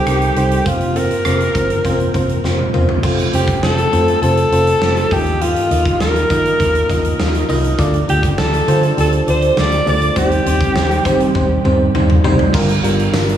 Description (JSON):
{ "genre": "1980s-style pop", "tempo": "101 BPM", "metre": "4/4", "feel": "straight", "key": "unclear", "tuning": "A4 = 441 Hz", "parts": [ { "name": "bright alto saxophone", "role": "melody", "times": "0.0-11.3 s", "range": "F4 to D5", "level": "-18 LUFS", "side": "equal", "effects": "diffuse ambient delay" }, { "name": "FM electric piano", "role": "accompaniment", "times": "0.0-13.4 s", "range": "G2 to Eb5", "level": "-18 LUFS", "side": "equal", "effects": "chorus" }, { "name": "vintage muted fingered electric bass", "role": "bass", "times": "0.1-13.3 s", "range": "F1 to Eb3", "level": "-18 LUFS", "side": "equal", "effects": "none" }, { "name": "huge arena drum kit", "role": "drums", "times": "0.1-13.4 s", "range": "crash cymbal, hi-hat, kick drum, rim click, snare drum, tambourine, toms", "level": "-20 LUFS", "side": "right 1 dB", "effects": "none" }, { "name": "mellow synth brass", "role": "stabs", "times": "10.6-11.3 s", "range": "Eb3 to G4", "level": "-26 LUFS", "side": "right 4 dB", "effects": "none" }, { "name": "crunchy overdriven guitar", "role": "accompaniment", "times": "12.5-13.4 s", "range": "G2 to G3", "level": "-23 LUFS", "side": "right 5 dB", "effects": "wide subtle chorus" } ], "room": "moderate plate reverb, RT60 1.7 s", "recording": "dreamy mix soaked in reverb, small room ambience", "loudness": "-13 LUFS", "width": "side -10 dB against mid", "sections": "0.0-3.0 A section; 3.0-12.5 B section", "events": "drum fill 2.4-3.0, 11.4-12.5; band accent 10.2-12.5", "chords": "0.0 Cm; 0.7 Fsus4; 3.0 F; 5.1 Ebsus2; 7.8 Dm; 10.2 Cm/Eb; 12.5 Gm7" }